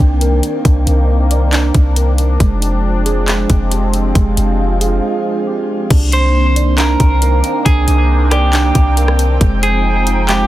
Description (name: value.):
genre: hip hop, atmospheric cloud-rap.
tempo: 137 BPM.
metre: 4/4.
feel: half-time.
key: unclear.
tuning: A4 = 442 Hz.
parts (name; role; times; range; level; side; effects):
sweeping resonant pad; sustained chords; 0.0-10.5 s; Eb3 to G5; -20 LUFS; left 1 dB; lush chorus, sidechain pumping.
muted felt-like synth keys; arpeggios; 0.0-10.5 s; Ab3 to D5; -21 LUFS; right 6 dB; chorus, digital delay.
clean 808-style bass; bass; 0.0-10.5 s; F1 to C2; -13 LUFS; equal; none.
trap drum kit; drums; 0.2-10.4 s; crash cymbal, handclaps, hi-hat, kick drum, rim click; -15 LUFS; equal; none.
clean electric guitar; melody; 6.1-10.5 s; G4 to C5; -17 LUFS; right 2 dB; spring reverb, digital delay.
room: little or no reverb.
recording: dense, heavily limited modern master.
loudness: -11 LUFS.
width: side -15 dB against mid.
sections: 0.0-5.9 A section; 5.9-10.5 B section.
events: break 5.0-5.9.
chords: 0.0 Cm9; 2.4 Fmadd9; 5.9 Cm9; 9.4 Fm9.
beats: 0.21 | 0.65 1.09 1.53 1.96 | 2.40 2.84 3.28 3.71 | 4.15 4.59 5.03 5.47 | 5.91 6.34 6.78 7.22 | 7.66 8.10 8.53 8.97 | 9.41 9.85 10.29.